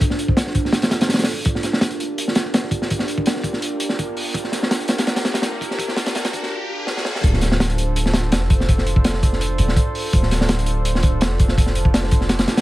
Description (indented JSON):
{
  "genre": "drum and bass, jungle",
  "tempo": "166 BPM",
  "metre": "4/4",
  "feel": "straight",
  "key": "D minor",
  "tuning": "A4 = 438 Hz",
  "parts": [
    { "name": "warbly tape-like pad", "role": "sustained chords", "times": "0.0-12.6 s", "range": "D4 to C5", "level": "-26 LUFS", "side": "right 1 dB", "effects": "chorus, built-in reverb" },
    { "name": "crunchy breakbeat drum kit", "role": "drums", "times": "0.0-12.6 s", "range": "hi-hat, kick drum, snare drum", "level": "-18 LUFS", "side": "equal", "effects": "none" },
    { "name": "riser", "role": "sound effects", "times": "3.2-7.2 s", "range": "none", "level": "-32 LUFS", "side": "equal", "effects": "none" },
    { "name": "long sustained 808-style bass", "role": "bass", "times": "7.2-12.5 s", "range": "D1 to F1", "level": "-21 LUFS", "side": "equal", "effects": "none" }
  ],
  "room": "studio reverb",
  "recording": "vinyl crackle, high-pass filter",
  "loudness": "-17 LUFS",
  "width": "side -16 dB against mid",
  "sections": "0.0-7.2 A section; 7.2-12.6 B section",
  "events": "build-up 0.0-7.2; filter sweep on ambient pad 0.0-7.2; filter sweep 0.0-7.2; riser 3.2-7.2; drum fill 6.9-7.2; drop 7.2-12.6",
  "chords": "0.0 Dm7; 1.5 Gm7; 7.2 Dm7"
}